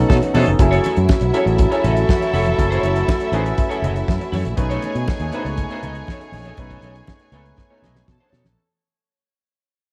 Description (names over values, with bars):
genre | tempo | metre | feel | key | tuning
disco | 120 BPM | 4/4 | straight | F# dorian | A4 = 441 Hz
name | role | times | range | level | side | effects
bright studio string section | second line | 0.0-8.6 s | E4 to A5 | -32 LUFS | equal | cassette tape
clear baby grand piano | accompaniment | 0.0-8.6 s | B2 to C#5 | -27 LUFS | equal | cassette tape
mellow French horn section | sustained chords | 0.0-8.5 s | C#3 to F#4 | -28 LUFS | equal | cassette tape
fingered electric bass | bass | 0.0-8.5 s | E#1 to B2 | -22 LUFS | equal | none
clear horn section | stabs | 0.1-8.3 s | F#3 to C#5 | -29 LUFS | equal | cassette tape, analog delay
damped 70s drum kit | drums | 0.1-8.6 s | hi-hat, kick drum, snare drum | -21 LUFS | equal | cassette tape
congas | percussion | 0.1-8.6 s | none | -31 LUFS | equal | none
electric guitar at the edge of break-up | accompaniment | 0.2-8.5 s | D#4 to D#5 | -30 LUFS | equal | analog chorus, cassette tape
room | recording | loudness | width
light reverb, studio reverb | home recording on cassette | -18 LUFS | mono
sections
0.6-8.6 A section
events
grand piano fill 0.0-0.6; band accent 0.0-0.6; fade-out 0.6-8.6; drum fill 7.6-8.6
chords
0.0 B9; 0.6 F#m7; 4.6 B9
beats
0.09 | 0.59 1.09 1.59 2.09 | 2.58 3.08 3.58 4.08 | 4.58 5.08 5.58 6.08 | 6.58 7.08 7.58 8.08